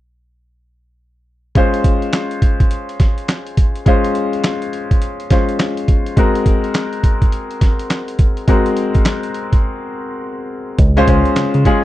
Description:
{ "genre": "R&B, new jack swing", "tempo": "104 BPM", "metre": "4/4", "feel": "swing 63% on 16ths", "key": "Db major", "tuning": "A4 = 441 Hz", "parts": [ { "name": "clear concert grand piano", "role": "accompaniment", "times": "1.6-11.8 s", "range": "Ab3 to C5", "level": "-18 LUFS", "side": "left 2 dB", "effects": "none" }, { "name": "boom bap sampler-style drum kit", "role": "drums", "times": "1.6-11.8 s", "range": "handclaps, hi-hat, kick drum, snare drum", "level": "-14 LUFS", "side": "equal", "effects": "vintage 12-bit sampler grit" }, { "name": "bell-like tine electric piano", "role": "bass", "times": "10.8-11.6 s", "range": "Db2 to Db3", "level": "-15 LUFS", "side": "equal", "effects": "none" } ], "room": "little or no reverb", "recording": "dry, close 1970s-style studio recording", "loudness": "-13 LUFS", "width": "side -15 dB against mid", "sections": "1.6-10.8 A section; 10.8-11.8 B section", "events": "break 9.6-10.8", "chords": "1.6 Dbmaj7; 6.2 Ab9; 10.8 Dbmaj7" }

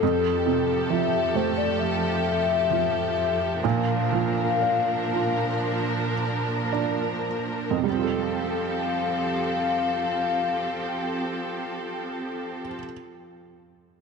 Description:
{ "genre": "pop", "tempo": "51-69 BPM", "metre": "4/4", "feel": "straight", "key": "F major", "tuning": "A4 = 440 Hz", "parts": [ { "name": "hollow clarinet-like synth lead", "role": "melody", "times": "0.0-12.8 s", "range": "A4 to F5", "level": "-26 LUFS", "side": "left 9 dB", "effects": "chorus" }, { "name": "felt-muted upright piano", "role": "accompaniment", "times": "0.0-14.0 s", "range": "F2 to A4", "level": "-28 LUFS", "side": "right 11 dB", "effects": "none" }, { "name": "warm studio string section", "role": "sustained chords", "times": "0.0-12.8 s", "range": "F2 to Bb4", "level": "-27 LUFS", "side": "right 1 dB", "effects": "none" } ], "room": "moderate plate reverb, RT60 2.8 s", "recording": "1960s-style stereo with parts hard left and right", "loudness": "-23 LUFS", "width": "side -5 dB against mid", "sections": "0.0-7.9 A section; 7.9-12.5 B section", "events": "slowing down 0.0-7.9", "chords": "0.0 Fadd9; 3.6 Bb; 7.9 Fadd9" }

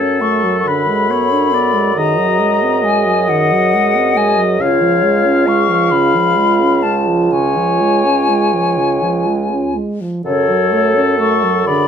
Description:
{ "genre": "classical, slow romantic movement for wind quintet", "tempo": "40-47 BPM (dotted quarters)", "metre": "6/8", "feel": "rubato", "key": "F# minor", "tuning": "A4 = 438 Hz", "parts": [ { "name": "silver concert flute", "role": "melody", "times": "0.0-11.9 s", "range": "C#5 to C#6", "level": "-17 LUFS", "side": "left 7 dB", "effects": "none" }, { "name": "clear oboe", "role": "second line", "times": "0.0-11.9 s", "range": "A4 to E#5", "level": "-18 LUFS", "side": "left 2 dB", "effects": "none" }, { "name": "mellow French horn", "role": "accompaniment", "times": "0.0-11.9 s", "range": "C#3 to D4", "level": "-20 LUFS", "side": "equal", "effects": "none" }, { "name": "mellow clarinet", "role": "accompaniment", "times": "0.0-11.9 s", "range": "E#4 to A4", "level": "-20 LUFS", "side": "right 8 dB", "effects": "none" }, { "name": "mellow bassoon", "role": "bass", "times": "0.0-11.9 s", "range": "C#2 to F#2", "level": "-19 LUFS", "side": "right 3 dB", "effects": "none" } ], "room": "moderate large studio reverb, RT60 0.8 s", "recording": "minimal, uncompressed stereo recording", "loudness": "-12 LUFS", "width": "side -8 dB against mid", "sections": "0.0-11.9 A section", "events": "none", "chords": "0.0 F#m; 0.7 G#dim/F#; 2.0 G#7/F#; 4.6 C#; 10.2 F#m" }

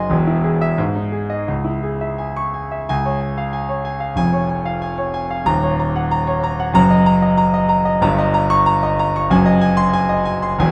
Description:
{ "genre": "classical, virtuoso piano study", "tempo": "84-95 BPM", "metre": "2/4", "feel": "rubato", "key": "Db major", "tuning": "A4 = 436 Hz", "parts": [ { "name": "clear concert grand piano", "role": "solo", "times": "0.0-10.7 s", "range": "Eb1 to C#6", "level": "-18 LUFS", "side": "equal", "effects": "none" } ], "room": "wet recital hall reverb, RT60 1.4 s", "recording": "none", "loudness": "-18 LUFS", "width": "mono", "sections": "0.0-2.9 A section; 2.9-10.7 B section", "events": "none", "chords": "0.1 E; 0.8 G#5; 1.5 C#m; 2.9 Db; 4.2 Db/F; 5.5 Ebm7; 6.7 Ebm/Gb; 8.0 D#7/G; 9.3 G#7/F#" }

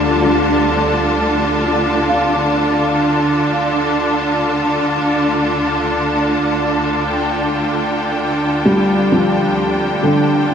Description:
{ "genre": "ambient", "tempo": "64 BPM", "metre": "4/4", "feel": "straight", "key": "D minor", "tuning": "A4 = 440 Hz", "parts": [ { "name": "bright symphonic string section", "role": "sustained chords", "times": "0.0-10.5 s", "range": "D3 to A5", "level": "-15 LUFS", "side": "equal", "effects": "none" }, { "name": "felt-muted upright piano", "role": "arpeggios", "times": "0.0-10.5 s", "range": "D3 to F5", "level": "-18 LUFS", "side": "equal", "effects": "diffuse ambient delay" }, { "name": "rich studio cello section", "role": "bass", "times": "0.0-10.5 s", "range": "D2", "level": "-27 LUFS", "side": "equal", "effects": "none" } ], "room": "wet huge ambient reverb, RT60 7.8 s", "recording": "cassette tape, nothing above 10.7 kHz", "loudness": "-14 LUFS", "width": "side -7 dB against mid", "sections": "0.0-10.5 A section", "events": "fade-out on cello section 0.0-10.5", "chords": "0.0 Dm" }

